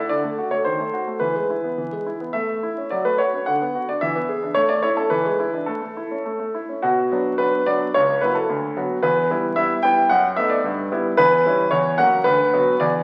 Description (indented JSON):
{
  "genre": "classical-period piano sonatina",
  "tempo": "102-113 BPM",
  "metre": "2/4",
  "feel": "rubato",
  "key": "A major, B minor from 6.8 s",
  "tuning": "A4 = 441 Hz",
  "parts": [
    { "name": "clear concert grand piano", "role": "solo", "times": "0.0-13.0 s", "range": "C#2 to G5", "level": "-21 LUFS", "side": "equal", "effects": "none" }
  ],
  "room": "wet recital hall reverb, RT60 1.5 s",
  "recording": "very old 78 rpm record, vinyl crackle",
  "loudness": "-21 LUFS",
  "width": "mono",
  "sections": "0.0-6.8 A section; 6.8-13.0 B section",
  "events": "none",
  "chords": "0.1 D; 0.7 D#dim7; 1.2 E; 2.3 A; 2.9 F#m; 3.5 Bm/D; 4.0 E7; 4.5 A; 5.1 E7; 5.7 A; 6.8 Bm; 7.9 F#7/C#; 8.5 Bm/D; 9.0 Em; 10.1 B7/F#; 10.6 Em/G; 11.2 C#dim/E; 11.7 F#7/E; 12.3 Bm/D",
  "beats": "| 0.11 0.65 | 1.21 1.78 | 2.35 2.92 | 3.47 4.01 | 4.55 5.10 | 5.67 6.25 | 6.83 7.39 | 7.94 8.49 | 9.03 9.57 | 10.10 10.64 | 11.18 11.71 | 12.26 12.81"
}